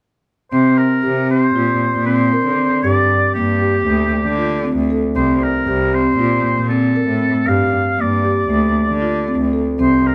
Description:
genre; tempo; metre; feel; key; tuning
contemporary instrumental, contemporary; 233 BPM (eighths); 9/8; straight; unclear; A4 = 439 Hz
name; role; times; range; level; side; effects
warm oboe; melody; 0.5-10.1 s; G4 to F5; -22 LUFS; equal; none
marimba with soft mallets; arpeggios; 0.5-10.1 s; A3 to Bb4; -20 LUFS; equal; none
rich cello; bass; 0.5-10.0 s; C2 to D3; -22 LUFS; equal; none
room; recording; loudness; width
little or no reverb; close, detailed microphones; -16 LUFS; mono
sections
0.5-10.1 A section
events
none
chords
0.5 C5; 1.6 Bbadd9; 2.8 Gm; 3.9 Dm7; 5.2 C5; 6.2 Bbsus2; 7.5 Gm7; 8.5 Dm7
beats
| 0.52 0.78 1.04 1.30 1.55 1.81 2.07 2.33 2.58 | 2.84 3.10 3.35 3.61 3.87 4.13 4.38 4.64 4.90 | 5.16 5.42 5.67 5.93 6.19 6.45 6.70 6.96 7.22 | 7.48 7.73 7.99 8.25 8.51 8.76 9.02 9.28 9.54 | 9.79 10.05

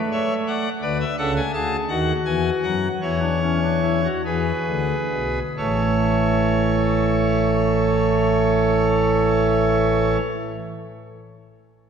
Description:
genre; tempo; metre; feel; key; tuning
classical, baroque-style 3-part fugue for pipe organ; 43-57 BPM (dotted quarters); 6/8; straight; A major; A4 = 444 Hz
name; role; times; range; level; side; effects
pipe organ, cornet; solo; 0.0-10.2 s; A1 to A5; -18 LUFS; equal; none
room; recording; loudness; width
wet church reverb, RT60 2.6 s; none; -18 LUFS; side -7 dB against mid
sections
0.0-5.6 A section; 5.6-11.1 B section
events
slowing down 0.0-5.6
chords
0.0 A; 0.8 Bm7; 1.9 Emaj9/D#; 3.0 Dmaj9/E; 4.2 E7; 5.6 A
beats
| 0.82 1.90 | 3.04 4.25 | 5.57 6.96 | 8.34 9.73

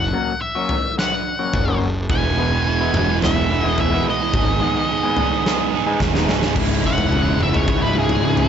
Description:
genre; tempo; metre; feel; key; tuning
quiet-loud alternative rock; 108 BPM; 4/4; straight; C# minor; A4 = 440 Hz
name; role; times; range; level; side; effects
octave-fuzz lead guitar; melody; 0.0-8.5 s; G#4 to G#5; -23 LUFS; left 2 dB; distortion
electric guitar through a small old amp; arpeggios; 0.0-8.5 s; C#2 to G#4; -25 LUFS; left 4 dB; phaser
fuzz picked electric bass; bass; 0.0-8.5 s; C#1 to G#1; -22 LUFS; equal; overdrive
huge arena drum kit; drums; 0.7-8.5 s; crash cymbal, kick drum, snare drum, toms; -22 LUFS; left 1 dB; none
overdriven electric guitar; riff; 2.1-8.5 s; C#2 to G#4; -21 LUFS; right 11 dB; none
thick fuzz guitar; riff; 6.5-8.5 s; C#2 to E4; -25 LUFS; left 10 dB; distortion
room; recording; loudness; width
light reverb, studio reverb; nothing above 7.8 kHz; -16 LUFS; side -8 dB against mid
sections
0.0-6.6 A section; 6.6-8.5 B section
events
half time 0.0-6.6; drum fill 6.0-6.6; lead electric guitar solo 6.6-8.5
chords
0.0 F#; 2.1 E; 4.3 G#m; 6.6 C#m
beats
0.42 0.98 1.54 | 2.10 2.65 3.21 3.77 | 4.33 4.89 5.44 6.00 | 6.56 7.12 7.68 8.24

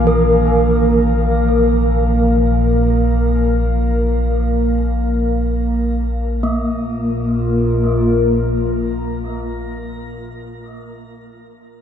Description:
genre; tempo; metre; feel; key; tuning
dark ambient drone; free time; none; none; unclear; A4 = 440 Hz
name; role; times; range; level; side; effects
dark analog pad; sustained chords; 0.0-9.9 s; Bb3 to F5; -19 LUFS; equal; chorus, phaser, shimmer reverb
gamelan-type bronze metallophone; arpeggios; 0.0-9.6 s; E3 to Bb4; -22 LUFS; right 1 dB; shimmer reverb, diffuse ambient delay
deep rumbling drone; drone; 0.0-9.6 s; Bb1 to Bb2; -18 LUFS; equal; built-in reverb, wide subtle chorus
room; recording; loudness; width
moderate huge ambient reverb, RT60 9.4 s; dark, warm production; -14 LUFS; side -9 dB against mid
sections
0.0-6.4 A section; 6.4-10.2 B section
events
none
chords
0.0 Bb5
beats
free time

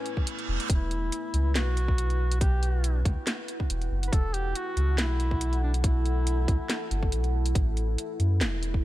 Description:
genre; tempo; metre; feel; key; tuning
deep dubstep; 140 BPM; 4/4; swing 54% on 16ths, half-time; E dorian; A4 = 440 Hz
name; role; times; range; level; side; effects
warm duduk; melody; 0.0-7.1 s; C#4 to B4; -35 LUFS; left 1 dB; dub echo
deep dark ambient pad; sustained chords; 0.0-8.8 s; A3 to F#5; -36 LUFS; left 1 dB; chorus, built-in reverb
reverse cymbal; sound effects; 0.0-0.7 s; none; -37 LUFS; right 7 dB; none
garage drum kit; drums; 0.1-8.7 s; hi-hat, snare drum; -32 LUFS; equal; none
electronic kick drum; drums; 0.2-8.8 s; none; -26 LUFS; equal; none
soft dub sub bass; bass; 0.5-8.8 s; E1 to F#2; -26 LUFS; equal; none
room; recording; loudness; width
digital ambience; none; -24 LUFS; side -16 dB against mid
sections
0.0-8.8 A section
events
reverse cymbal 0.0-0.7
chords
0.0 A; 0.7 E5; 7.6 A5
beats
0.27 | 0.70 1.12 1.55 1.98 | 2.41 2.84 3.27 3.70 | 4.12 4.55 4.98 5.41 | 5.84 6.27 6.70 7.12 | 7.55 7.98 8.41 8.84

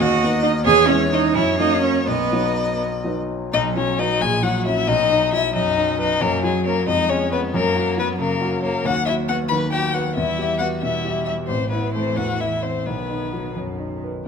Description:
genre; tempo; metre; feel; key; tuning
quick classical-period movement for piano quartet; 81-93 BPM (dotted quarters); 6/8; rubato; B major; A4 = 435 Hz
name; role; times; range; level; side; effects
warm violin; melody; 0.0-13.6 s; G#4 to B5; -23 LUFS; left 7 dB; none
dark violin; second line; 0.0-13.6 s; G#3 to D#5; -26 LUFS; left 3 dB; none
rich cello; second line; 0.0-14.0 s; D#3 to G#4; -24 LUFS; right 11 dB; none
warm concert grand piano; accompaniment; 0.0-14.3 s; A1 to E5; -22 LUFS; left 1 dB; none
room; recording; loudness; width
wet recital hall reverb, RT60 1.7 s; close, detailed microphones; -18 LUFS; side -6 dB against mid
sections
0.0-3.5 A section; 3.5-14.3 B section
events
none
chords
0.0 B/D#; 0.7 C#m/E; 1.4 F#; 2.1 B; 3.5 B5; 4.2 F#/A#; 4.9 B; 6.2 F#5; 6.9 C#/E#; 7.5 F#; 8.9 B/D#; 10.2 Em; 11.5 A5; 12.9 B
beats
0.01 | 0.67 1.36 | 2.08 2.81 | 3.53 4.21 | 4.88 5.55 | 6.22 6.88 | 7.54 8.19 | 8.85 9.51 | 10.16 10.82 | 11.48 12.16 | 12.86 13.56 | 14.27

